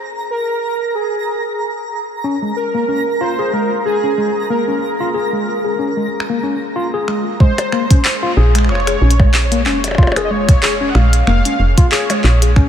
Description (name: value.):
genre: IDM.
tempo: 93 BPM.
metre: 4/4.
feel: swing 56% on 16ths.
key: Bb minor.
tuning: A4 = 442 Hz.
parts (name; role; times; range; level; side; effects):
twinkling granular texture; texture; 0.0-7.4 s; Bb5; -27 LUFS; right 1 dB; built-in reverb, ensemble chorus, sidechain pumping.
warm velvety synth lead; melody; 0.3-12.4 s; Ab4 to Gb5; -20 LUFS; right 1 dB; chorus, ping-pong delay.
tine electric piano; arpeggios; 2.2-12.7 s; Ab3 to Ab4; -19 LUFS; left 3 dB; overdrive, ping-pong delay.
glitchy drum kit; drums; 6.2-12.7 s; finger snaps, handclaps, hi-hat, percussion blips; -20 LUFS; equal; low-pass filter on hats, low-pass filter on snare, low-pass filter on perc.
electronic kick drum; drums; 7.4-12.7 s; none; -10 LUFS; equal; none.
woody FM bass; bass; 8.4-12.7 s; F1 to Bb1; -14 LUFS; equal; tube saturation.
room: moderate cathedral reverb, RT60 6.0 s.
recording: dreamy mix soaked in reverb.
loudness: -13 LUFS.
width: side -9 dB against mid.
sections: 0.0-7.4 A section; 7.4-12.7 B section.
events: none.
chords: 0.0 Bb7(no3); 7.1 Absus2; 7.4 Bbm7.